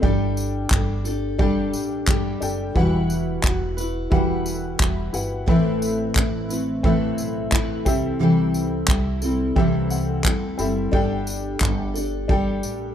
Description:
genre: acoustic pop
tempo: 88 BPM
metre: 4/4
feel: straight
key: unclear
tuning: A4 = 441 Hz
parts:
  - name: clear upright piano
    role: accompaniment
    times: 0.0-12.9 s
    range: C4 to B5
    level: -30 LUFS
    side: left 2 dB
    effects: none
  - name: picked steel-string acoustic guitar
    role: accompaniment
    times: 0.0-12.9 s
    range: A2 to B4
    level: -22 LUFS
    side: equal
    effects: double-tracked left and right
  - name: upright bass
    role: bass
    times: 0.0-12.9 s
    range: E1 to D2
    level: -29 LUFS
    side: equal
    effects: none
  - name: natural country drum kit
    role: drums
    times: 0.0-12.8 s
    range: handclaps, kick drum, tambourine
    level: -22 LUFS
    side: equal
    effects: none
room: small room ambience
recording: rough home demo mix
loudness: -19 LUFS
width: side -9 dB against mid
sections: 0.0-12.9 A section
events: upright piano fill 9.6-10.9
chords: 0.0 Gsus2; 2.8 Emadd9; 5.5 Amadd9; 7.9 C6; 10.9 Gsus2

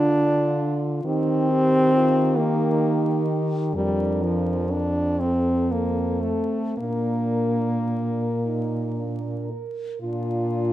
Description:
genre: classical, lyrical piece for horn quartet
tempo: 36-46 BPM (dotted quarters)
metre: 6/8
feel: rubato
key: Bb major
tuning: A4 = 439 Hz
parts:
  - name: warm French horn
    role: melody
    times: 0.0-10.7 s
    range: F4 to Bb4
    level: -30 LUFS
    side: left 5 dB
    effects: none
  - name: dark French horn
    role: second line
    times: 0.0-10.7 s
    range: C4 to Bb4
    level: -30 LUFS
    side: right 8 dB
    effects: none
  - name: warm French horn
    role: accompaniment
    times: 0.0-10.7 s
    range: F3 to D4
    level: -23 LUFS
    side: left 1 dB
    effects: none
  - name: mellow French horn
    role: bass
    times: 0.0-10.7 s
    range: F2 to Eb3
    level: -26 LUFS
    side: right 1 dB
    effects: none
room: light reverb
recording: close, detailed microphones, vinyl crackle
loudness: -21 LUFS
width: side -13 dB against mid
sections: 0.0-10.0 A section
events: none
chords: 0.0 Dm; 1.1 Eb; 3.8 Bb/F; 5.2 F; 6.8 Bb

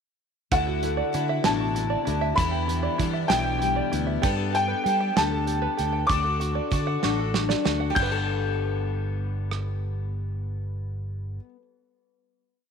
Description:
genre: indie folk with a building arrangement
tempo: 64 BPM (dotted quarters)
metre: 6/8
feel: straight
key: G major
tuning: A4 = 440 Hz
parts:
  - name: clear upright piano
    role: melody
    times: 0.5-11.4 s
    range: F#5 to G6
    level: -27 LUFS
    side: left 1 dB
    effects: none
  - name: fingerpicked steel-string acoustic guitar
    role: accompaniment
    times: 0.5-6.1 s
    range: E2 to E4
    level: -33 LUFS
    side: left 12 dB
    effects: none
  - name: picked twelve-string acoustic guitar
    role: accompaniment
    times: 0.5-11.6 s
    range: D3 to A4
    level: -31 LUFS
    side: left 13 dB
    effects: none
  - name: open-back banjo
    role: arpeggios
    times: 0.5-11.4 s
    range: E4 to G5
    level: -31 LUFS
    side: right 14 dB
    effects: slapback echo
  - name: picked electric bass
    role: bass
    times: 0.5-11.4 s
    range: G1 to G3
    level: -28 LUFS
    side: right 1 dB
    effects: none
  - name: loose indie drum kit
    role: drums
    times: 0.5-9.7 s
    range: crash cymbal, hi-hat, kick drum, rim click, snare drum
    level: -28 LUFS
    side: right 4 dB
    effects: none
room: light reverb, small room ambience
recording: 1960s-style stereo with parts hard left and right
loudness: -23 LUFS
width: side -6 dB against mid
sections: 0.5-8.0 pre-chorus; 8.0-11.7 final chord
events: drum fill 7.0-8.0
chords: 0.5 Dadd9; 2.4 Em7; 4.2 Gadd9; 6.1 D; 8.0 Gadd9

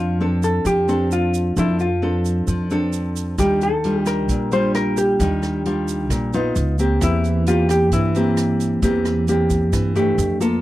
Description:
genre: bossa nova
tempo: 132 BPM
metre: 4/4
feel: straight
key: F major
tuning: A4 = 444 Hz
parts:
  - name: hollow-body jazz guitar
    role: melody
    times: 0.0-10.1 s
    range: E4 to C5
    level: -22 LUFS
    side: left 1 dB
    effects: none
  - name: nylon-string guitar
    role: accompaniment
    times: 0.0-10.6 s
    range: Bb2 to A4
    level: -20 LUFS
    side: equal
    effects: none
  - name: upright bass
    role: bass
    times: 0.0-10.6 s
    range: Bb1 to G2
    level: -22 LUFS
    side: equal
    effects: none
  - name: tube shaker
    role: percussion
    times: 0.4-10.6 s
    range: none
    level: -36 LUFS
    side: right 15 dB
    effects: none
  - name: vintage drum kit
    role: drums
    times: 3.4-10.5 s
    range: hi-hat, kick drum, rim click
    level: -26 LUFS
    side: equal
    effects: none
room: little or no reverb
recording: dry, close 1970s-style studio recording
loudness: -17 LUFS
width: side -15 dB against mid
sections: 0.0-10.6 A section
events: none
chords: 0.0 F6; 3.4 Ebmaj9; 6.6 Db9; 7.0 C7/E; 10.2 F69

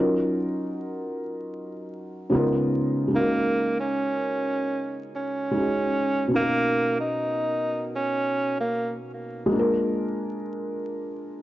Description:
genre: hip hop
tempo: 75 BPM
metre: 4/4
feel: swing 61% on 16ths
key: F# major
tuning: A4 = 440 Hz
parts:
  - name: felt-muted upright piano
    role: accompaniment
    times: 0.0-11.4 s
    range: B2 to A#4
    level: -26 LUFS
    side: equal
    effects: cassette tape, low-pass filter, plate reverb
  - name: mellow tenor saxophone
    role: melody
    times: 3.2-9.0 s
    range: A#3 to D#4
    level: -25 LUFS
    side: right 1 dB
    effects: low-pass filter, plate reverb
room: moderate studio reverb, RT60 0.5 s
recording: vinyl crackle, nothing above 7.5 kHz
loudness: -23 LUFS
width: side -15 dB against mid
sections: 0.0-11.4 A section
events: none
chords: 0.0 D#m7; 2.3 C#13; 3.1 F#6; 9.5 A#7

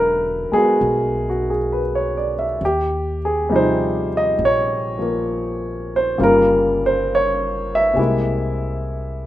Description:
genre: jazz ballad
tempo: 67 BPM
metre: 4/4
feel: swing 66% on 8ths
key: unclear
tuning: A4 = 440 Hz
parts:
  - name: clear baby grand piano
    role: accompaniment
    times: 0.0-9.3 s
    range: C3 to E5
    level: -17 LUFS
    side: equal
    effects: none
  - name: upright bass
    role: bass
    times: 0.0-9.3 s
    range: E1 to Eb2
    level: -27 LUFS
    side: equal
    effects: none
room: wet studio reverb, RT60 0.7 s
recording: rough home demo mix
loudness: -17 LUFS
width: side -13 dB against mid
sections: 0.0-9.3 A section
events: none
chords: 0.0 E9; 2.6 Eb69; 6.2 Gm7b5; 8.0 C7b13

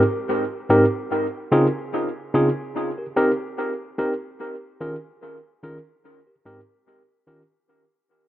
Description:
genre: reggae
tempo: 73 BPM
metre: 4/4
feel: swing 54% on 16ths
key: unclear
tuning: A4 = 440 Hz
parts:
  - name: barky tine electric piano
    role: solo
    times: 0.7-7.4 s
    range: Ab2 to Bb4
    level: -20 LUFS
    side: equal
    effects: overdrive, dub echo
room: wet spring reverb, RT60 2.5 s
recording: none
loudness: -20 LUFS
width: side -13 dB against mid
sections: 0.0-7.7 A section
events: fade-out 0.0-7.7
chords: 0.0 Abmaj7; 1.1 Dbmaj7; 2.8 Cm7; 4.4 Eb9sus4; 6.0 Abmaj7; 6.9 Eb7

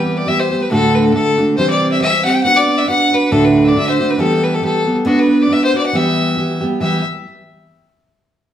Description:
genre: celtic folk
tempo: 138 BPM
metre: 2/4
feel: swing 55% on 8ths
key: E minor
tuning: A4 = 439 Hz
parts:
  - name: clear fiddle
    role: melody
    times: 0.0-7.0 s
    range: F#4 to G5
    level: -16 LUFS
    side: left 2 dB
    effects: none
  - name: fingerpicked steel-string acoustic guitar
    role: accompaniment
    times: 0.0-7.0 s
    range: D2 to B4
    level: -14 LUFS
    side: right 1 dB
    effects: none
room: wet large studio reverb, RT60 1.1 s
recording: band playing live in one room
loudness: -12 LUFS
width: side -10 dB against mid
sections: 0.0-6.8 A section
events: none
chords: 0.0 Em; 0.7 D; 1.6 C; 2.4 Bm; 3.3 D; 4.2 Em; 5.1 Bm; 5.9 Em

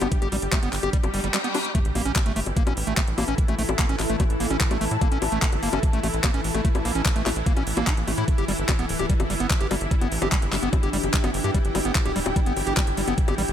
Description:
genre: psychedelic trance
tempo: 147 BPM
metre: 4/4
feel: straight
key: unclear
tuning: A4 = 440 Hz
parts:
  - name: swarming drone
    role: sustained chords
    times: 0.0-13.5 s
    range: E3 to G4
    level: -31 LUFS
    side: equal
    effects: built-in reverb, sidechain pumping
  - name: overdriven acid bass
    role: riff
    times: 0.0-13.4 s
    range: G3 to G4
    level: -29 LUFS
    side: moving between left 5 dB and right 4 dB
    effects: auto-pan, sidechain pumping, tape echo
  - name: tight sequencer bass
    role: bass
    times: 0.0-13.5 s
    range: D1 to A2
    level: -28 LUFS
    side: equal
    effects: none
  - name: garage drum kit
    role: drums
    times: 0.0-13.5 s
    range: bongos, handclaps, hi-hat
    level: -28 LUFS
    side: left 3 dB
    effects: studio reverb
  - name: ethereal airy pad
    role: texture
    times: 0.0-13.5 s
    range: D4 to A5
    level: -32 LUFS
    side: equal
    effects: ensemble chorus, built-in reverb, phaser, sidechain pumping
  - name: electronic kick drum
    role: drums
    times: 0.1-13.3 s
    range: none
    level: -23 LUFS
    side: equal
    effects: studio reverb
  - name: reverse cymbal and impact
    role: sound effects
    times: 1.1-3.4 s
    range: none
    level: -33 LUFS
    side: left 2 dB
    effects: none
room: digital ambience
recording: none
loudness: -21 LUFS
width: side -10 dB against mid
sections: 0.0-1.7 A section; 1.7-13.5 B section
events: reverse cymbal 1.1-1.7; drop 1.7-13.5; impact 1.7-3.4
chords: 0.0 G5; 1.7 A5; 8.3 G5

